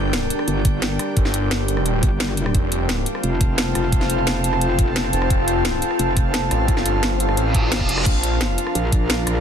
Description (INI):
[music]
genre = dark technical drum and bass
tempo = 174 BPM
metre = 4/4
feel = straight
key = unclear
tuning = A4 = 438 Hz
[part]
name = deep dark ambient pad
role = sustained chords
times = 0.0-9.4 s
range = G3 to A5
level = -25 LUFS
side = equal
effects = chorus, built-in reverb, sidechain pumping
[part]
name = wide detuned saw bass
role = bass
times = 0.0-3.0, 5.1-8.6 s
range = F1 to Bb1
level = -22 LUFS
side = equal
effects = chorus, overdrive, sidechain pumping
[part]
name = airy breathy pad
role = texture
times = 0.0-9.4 s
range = C4 to G5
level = -27 LUFS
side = equal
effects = chorus, sidechain pumping
[part]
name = drum and bass drum kit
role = drums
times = 0.1-9.3 s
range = crash cymbal, hi-hat, rim click, snare drum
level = -24 LUFS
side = equal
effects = none
[part]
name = metallic wobble bass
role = bass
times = 0.5-6.5, 8.8-9.4 s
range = F1 to Bb1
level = -22 LUFS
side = equal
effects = chorus
[part]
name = electronic kick drum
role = drums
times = 0.6-9.0 s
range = none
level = -19 LUFS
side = equal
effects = none
[part]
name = reverse cymbal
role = sound effects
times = 7.5-8.1 s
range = none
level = -25 LUFS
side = right 1 dB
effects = none
[sound]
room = light reverb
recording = dense, heavily limited modern master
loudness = -17 LUFS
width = side -8 dB against mid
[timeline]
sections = 0.0-9.4 A section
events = reverse cymbal 7.5-8.1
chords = 0.0 Gm; 2.5 F; 8.1 Bb